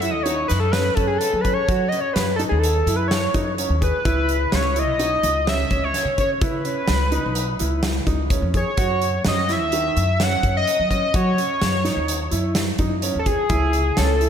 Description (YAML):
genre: progressive instrumental, band music in an uneven meter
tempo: 127 BPM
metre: 5/4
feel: straight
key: unclear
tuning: A4 = 440 Hz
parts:
  - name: pulse-width lead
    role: melody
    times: 0.0-14.3 s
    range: G#4 to F#5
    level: -22 LUFS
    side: left 1 dB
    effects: chorus, slapback echo, ping-pong delay
  - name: warm grand piano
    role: arpeggios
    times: 0.0-14.3 s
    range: D#3 to G#4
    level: -26 LUFS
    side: right 2 dB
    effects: slapback echo, ping-pong delay
  - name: upright bass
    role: bass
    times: 0.0-14.3 s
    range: B1 to F#3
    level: -23 LUFS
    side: equal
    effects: none
  - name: big rock drum kit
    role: drums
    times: 0.0-14.3 s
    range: hi-hat, kick drum, snare drum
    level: -25 LUFS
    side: equal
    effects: none
room: moderate concert hall reverb, RT60 2.0 s, studio ambience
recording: big arena sound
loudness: -18 LUFS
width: side -8 dB against mid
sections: 0.0-14.3 A section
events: none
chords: 0.0 F#m; 4.1 C#m7; 8.8 F#5; 13.5 C#m